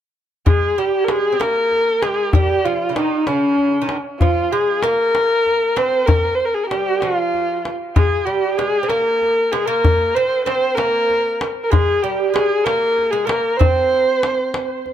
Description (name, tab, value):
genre	Persian modal ensemble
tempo	64 BPM (dotted quarters)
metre	6/8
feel	straight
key	unclear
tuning	A4 = 436 Hz
part	warm kamancheh	melody	0.5-14.8 s	Db4+49c to C5	-17 LUFS	equal	tape echo
part	lute	second line	0.5-14.8 s	Db3+45c to C4	-24 LUFS	right 5 dB	none
part	tombak	percussion	0.5-14.9 s	none	-18 LUFS	left 2 dB	none
room	moderate small room ambience, RT60 0.5 s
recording	none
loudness	-15 LUFS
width	side -10 dB against mid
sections	0.5-14.9 A section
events	none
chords	none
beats	| 0.45 1.39 | 2.33 3.27 | 4.21 5.15 | 6.09 7.03 | 7.96 8.90 | 9.84 10.78 | 11.72 12.66 | 13.60 14.54